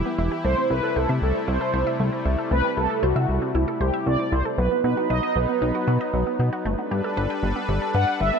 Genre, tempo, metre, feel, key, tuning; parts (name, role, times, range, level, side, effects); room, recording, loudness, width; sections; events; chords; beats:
pop; 116 BPM; 4/4; straight; A4 = 440 Hz
lush unison pad; sustained chords; 0.0-8.4 s; C3 to B4; -28 LUFS; left 2 dB; chorus
wide unison pluck; arpeggios; 0.0-8.4 s; F#3 to G5; -30 LUFS; right 1 dB; phaser, tape echo
chorused synth bass; bass; 0.0-8.3 s; E1 to C3; -23 LUFS; equal
mellow synth brass; melody; 0.4-8.4 s; E4 to F#5; -25 LUFS; right 2 dB; chorus, tape echo
light reverb; -21 LUFS; side -6 dB against mid
0.0-4.6 A section; 4.6-8.4 B section
0.4 C6; 4.6 B; 6.7 Gadd9
| 0.45 0.96 1.48 2.00 | 2.51 3.03 3.55 4.07 | 4.58 5.10 5.62 6.13 | 6.65 7.17 7.69 8.20